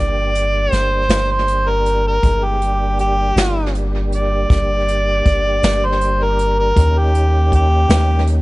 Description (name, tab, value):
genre	slow blues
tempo	53 BPM (dotted quarters)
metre	12/8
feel	straight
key	G minor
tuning	A4 = 440 Hz
part	overdriven harmonica	melody	0.0-8.3 s	G4 to D5	-18 LUFS	equal	none
part	tonewheel organ	sustained chords	0.0-8.4 s	G3 to Ab4	-26 LUFS	equal	slow rotary speaker, chorus vibrato
part	punchy sub bass	bass	0.0-8.4 s	G1 to Eb2	-17 LUFS	equal	none
part	jazz brush drum kit	drums	0.4-8.4 s	hi-hat, kick drum, snare drum	-18 LUFS	equal	tape echo
room	small room ambience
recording	echo-heavy mix, nothing above 10.8 kHz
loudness	-14 LUFS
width	side -20 dB against mid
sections	0.0-8.4 A section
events	harmonica solo 0.0-8.4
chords	0.0 Gm; 6.8 Eb7